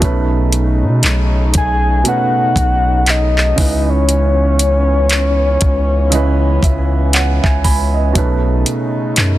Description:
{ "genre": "contemporary R&B", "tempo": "59 BPM", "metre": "4/4", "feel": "swing 58% on 16ths", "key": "C# minor", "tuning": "A4 = 440 Hz", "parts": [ { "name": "dark concert grand piano", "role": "accompaniment", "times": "0.0-9.4 s", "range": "B2 to B5", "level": "-19 LUFS", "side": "right 4 dB", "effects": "none" }, { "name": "warm French horn section", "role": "sustained chords", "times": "0.0-9.4 s", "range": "C#3 to D#4", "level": "-23 LUFS", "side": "left 2 dB", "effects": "sidechain pumping" }, { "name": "long sustained 808-style bass", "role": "bass", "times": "0.0-9.4 s", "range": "B1 to B2", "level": "-15 LUFS", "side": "equal", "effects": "none" }, { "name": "smooth R&B drum kit", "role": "drums", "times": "0.0-9.4 s", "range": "handclaps, hi-hat, kick drum", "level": "-16 LUFS", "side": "equal", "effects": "none" }, { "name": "soft octave-layered synth lead", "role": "melody", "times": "1.6-6.9 s", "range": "C#5 to G#5", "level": "-17 LUFS", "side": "left 2 dB", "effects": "chorus, tape echo" } ], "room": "little or no reverb", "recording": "dense, heavily limited modern master", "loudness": "-12 LUFS", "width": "side -15 dB against mid", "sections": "0.0-9.4 A section", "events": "grand piano fill 6.1-8.2", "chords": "0.0 B9; 3.6 C#m9; 8.2 B9" }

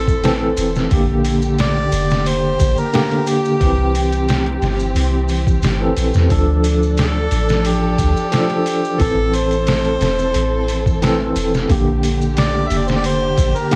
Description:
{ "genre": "trip hop", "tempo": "89 BPM", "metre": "4/4", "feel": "straight", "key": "unclear", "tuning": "A4 = 440 Hz", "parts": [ { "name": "mellow harmonica", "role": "melody", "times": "0.0-13.8 s", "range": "G4 to E5", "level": "-25 LUFS", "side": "equal", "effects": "vintage 12-bit sampler grit, dub echo" }, { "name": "tine electric piano", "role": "accompaniment", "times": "0.0-13.8 s", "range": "D3 to A4", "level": "-22 LUFS", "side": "equal", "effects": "tremolo" }, { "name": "dark symphonic string section", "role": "sustained chords", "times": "0.0-13.8 s", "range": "D3 to A4", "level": "-27 LUFS", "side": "equal", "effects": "vintage 12-bit sampler grit" }, { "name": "soft 808-style bass", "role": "bass", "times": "0.0-13.5 s", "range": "E1 to E2", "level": "-22 LUFS", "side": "equal", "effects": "none" }, { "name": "trip hop sampler-style drum kit", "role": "drums", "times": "0.1-13.8 s", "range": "hi-hat, kick drum, snare drum", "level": "-23 LUFS", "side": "equal", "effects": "none" }, { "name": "maracas", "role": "percussion", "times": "0.1-13.8 s", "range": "none", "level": "-38 LUFS", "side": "equal", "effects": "none" } ], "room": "light reverb, small room ambience", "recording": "worn, warbling old tape, cassette tape, vinyl crackle, warbly pitch drift", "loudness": "-17 LUFS", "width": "mono", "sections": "0.0-13.8 A section", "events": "none", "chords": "0.0 Am; 0.9 Gm; 3.6 C; 6.3 Dm; 9.0 Am; 11.7 Gm" }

